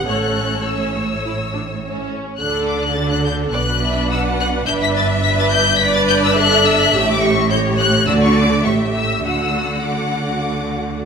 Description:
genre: quick classical-period movement for string orchestra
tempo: 105 BPM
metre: 4/4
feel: straight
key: D major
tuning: A4 = 438 Hz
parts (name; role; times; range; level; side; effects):
- rich studio violin section; melody; 0.0-11.1 s; C#6 to B6; -20 LUFS; left 5 dB; none
- clear studio violin section; second line; 0.0-11.1 s; C#5 to F#5; -23 LUFS; left 1 dB; none
- rich studio viola section; accompaniment; 0.0-11.1 s; A3 to B4; -20 LUFS; right 2 dB; none
- rich studio cello section; bass; 0.0-11.1 s; G2 to D3; -23 LUFS; right 2 dB; none
- warm studio double bass section; bass; 0.0-11.1 s; G1 to D2; -24 LUFS; right 2 dB; none
room: wet recital hall reverb, RT60 1.8 s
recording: none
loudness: -15 LUFS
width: side -6 dB against mid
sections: 0.0-11.1 A section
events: none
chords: 0.1 A; 2.4 D5; 3.5 Bm; 4.7 Em7/G; 7.0 A7; 8.1 D; 8.7 A7(no3); 9.2 D

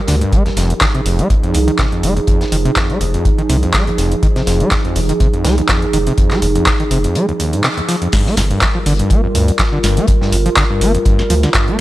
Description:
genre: acid house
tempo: 123 BPM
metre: 4/4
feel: swing 54% on 16ths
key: G phrygian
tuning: A4 = 440 Hz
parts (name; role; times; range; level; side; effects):
- dark analog pad; sustained chords; 0.0-11.8 s; F3 to Bb4; -20 LUFS; right 2 dB; chorus, phaser, sidechain pumping
- overdriven acid bass; riff; 0.1-11.8 s; Eb2 to Bb3; -18 LUFS; equal; distortion, sidechain pumping, tape echo
- round analog bass; bass; 0.1-11.5 s; F1 to D2; -16 LUFS; equal; sidechain pumping
- booming analog drum machine; drums; 0.1-11.7 s; crash cymbal, handclaps, hi-hat, snare drum; -19 LUFS; equal; none
- tight funk drum kit; drums; 0.1-11.8 s; hi-hat, snare drum; -27 LUFS; left 1 dB; high-pass filter on hats, high-pass filter on snare, high-pass filter on room
- electronic kick drum; drums; 0.3-11.7 s; none; -16 LUFS; equal; none
room: digital ambience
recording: dry, gritty hardware recording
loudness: -12 LUFS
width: side -16 dB against mid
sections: 0.0-8.1 A section; 8.1-11.8 B section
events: break 7.2-8.1; band accent 7.6; drop 8.1-11.8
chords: 0.3 Fm7; 8.1 Gm7

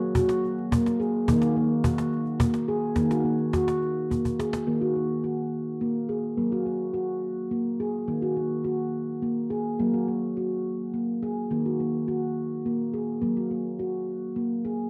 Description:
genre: world meditative, meditative tuned percussion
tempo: 70 BPM (dotted quarters)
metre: 6/8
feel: straight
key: Eb minor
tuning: A4 = 440 Hz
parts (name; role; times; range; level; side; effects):
- handpan; arpeggios; 0.0-14.9 s; Eb3 to Ab4; -27 LUFS; equal; cassette tape
- cajon; percussion; 0.1-4.7 s; none; -30 LUFS; equal; none
room: wet spring reverb, RT60 1.3 s, small room ambience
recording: home recording on cassette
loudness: -27 LUFS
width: mono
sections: 0.0-4.7 A section; 4.7-14.9 B section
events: drum fill 4.1-4.7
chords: 0.0 Gb; 1.3 Ebm; 6.4 Gb; 8.1 Ebm; 9.8 Gb; 11.5 Ebm; 13.2 Gb

